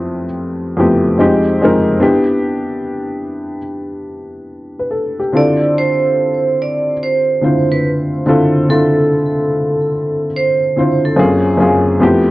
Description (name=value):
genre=hip hop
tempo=72 BPM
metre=4/4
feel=swing 66% on 16ths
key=D dorian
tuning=A4 = 442 Hz
part: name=dark upright piano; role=accompaniment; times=0.0-12.3 s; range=F2 to C5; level=-13 LUFS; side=left 1 dB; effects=cassette tape, low-pass filter
part: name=vibraphone with hard mallets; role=melody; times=5.4-11.2 s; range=A4 to D5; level=-16 LUFS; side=right 2 dB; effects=low-pass filter, plate reverb
room=wet studio ambience, RT60 0.5 s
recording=worn, warbling old tape, cassette tape, warbly pitch drift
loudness=-12 LUFS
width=side -18 dB against mid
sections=0.0-12.3 A section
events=none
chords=0.0 Fmaj9#11; 1.2 Fm7; 2.0 Em7; 5.4 Dm7; 11.2 F#maj9#11